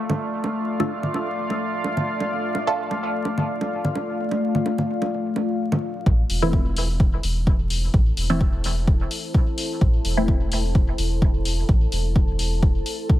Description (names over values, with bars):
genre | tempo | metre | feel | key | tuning
dub techno | 128 BPM | 4/4 | swing 54% on 16ths | A minor | A4 = 441 Hz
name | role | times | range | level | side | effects
deep dark ambient pad | sustained chords | 0.0-13.2 s | A3 to A5 | -27 LUFS | left 1 dB | chorus, built-in reverb, sidechain pumping
filtered dub chord stab | stabs | 0.0-12.0 s | E3 to A4 | -27 LUFS | right 1 dB | phaser, sidechain pumping, dub echo
bongos and congas | percussion | 0.1-5.8 s | none | -27 LUFS | right 1 dB | overdrive, sidechain pumping on perc, dub echo
soft dub sub bass | bass | 6.1-12.8 s | E1 to A1 | -23 LUFS | equal | sidechain pumping
electronic kick drum | drums | 6.1-13.2 s | none | -19 LUFS | equal | none
electronic hi-hat | drums | 6.3-13.0 s | none | -30 LUFS | left 3 dB | none
room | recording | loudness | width
light reverb, digital ambience | vinyl crackle | -20 LUFS | side -14 dB against mid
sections
0.0-6.1 A section; 6.1-13.2 B section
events
none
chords
0.0 Dm; 6.1 Am